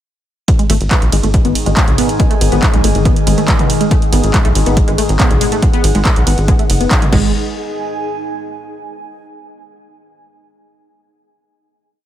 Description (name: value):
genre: driving peak-time techno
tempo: 140 BPM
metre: 4/4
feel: straight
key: G# minor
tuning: A4 = 439 Hz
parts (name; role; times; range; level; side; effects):
- overtone-sweeping drone; drone; 1.3-7.4 s; G#2 to D#3; -22 LUFS; left 1 dB; chorus, built-in reverb, phaser, sidechain pumping
- electronic kick drum; drums; 0.5-7.2 s; none; -14 LUFS; equal; none
- punchy analog drum machine; drums; 0.5-7.2 s; crash cymbal, handclaps, hi-hat, ride cymbal, toms; -19 LUFS; right 1 dB; sidechain pumping on hats, sidechain pumping on cymbals, sidechain pumping on toms
- warbly tape-like pad; texture; 0.9-9.0 s; D#4 to G#5; -22 LUFS; left 1 dB; chorus, built-in reverb, sidechain pumping
- tight sequenced synth; riff; 0.6-7.3 s; G#3 to B3; -20 LUFS; right 1 dB; chorus, overdrive, sidechain pumping, dub echo
- tight sequencer bass; bass; 0.7-7.3 s; F#1 to B1; -15 LUFS; equal; tube saturation, sidechain pumping
room: little or no reverb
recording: none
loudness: -11 LUFS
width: side -11 dB against mid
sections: 0.5-7.3 drop; 7.3-9.1 final note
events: drop 0.5-7.3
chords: 0.5 G#5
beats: | 0.48 0.91 1.34 1.77 | 2.20 2.63 3.05 3.48 | 3.91 4.34 4.77 5.20 | 5.63 6.05 6.48 6.91 | 7.34 7.77 8.20 8.63